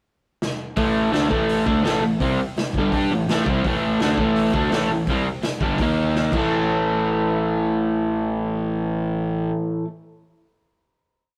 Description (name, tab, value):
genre	garage rock duo or trio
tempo	168 BPM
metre	4/4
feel	straight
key	A minor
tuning	A4 = 441 Hz
part	raw garage drum kit	drums	0.4-6.4 s	crash cymbal, hi-hat, kick drum, snare drum	-29 LUFS	equal	none
part	crunchy overdriven guitar	riff	0.8-9.9 s	G2 to G4	-23 LUFS	equal	none
part	fuzz picked electric bass	bass	0.8-9.5 s	G1 to G2	-29 LUFS	equal	overdrive
room	moderate stone room reverb, RT60 1.2 s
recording	rough rehearsal-room recording, warm saturation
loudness	-22 LUFS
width	mono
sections	0.0-0.8 pickup bar; 0.8-6.5 riff; 6.5-9.4 final hit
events	drum fill 0.4-0.8, 6.1-6.5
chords	0.0 N.C.; 0.8 Am; 5.8 D#5; 6.3 A5